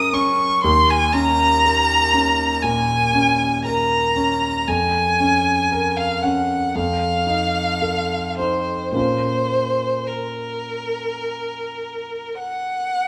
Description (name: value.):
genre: classical, romantic duo for violin and grand piano.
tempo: 49-60 BPM.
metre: 4/4.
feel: rubato.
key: Bb minor.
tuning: A4 = 440 Hz.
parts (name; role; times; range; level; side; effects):
clear violin; melody; 0.0-13.1 s; Bb4 to Eb6; -21 LUFS; equal; none.
warm grand piano; accompaniment; 0.0-13.1 s; Eb2 to Bb4; -25 LUFS; equal; none.
room: moderate recital hall reverb, RT60 1.4 s.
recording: none.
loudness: -19 LUFS.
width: mono.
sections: 0.0-13.1 A section.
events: none.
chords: 0.0 Gb; 0.6 Eb5; 4.7 Bbm/F; 6.7 F7; 8.9 Bbm.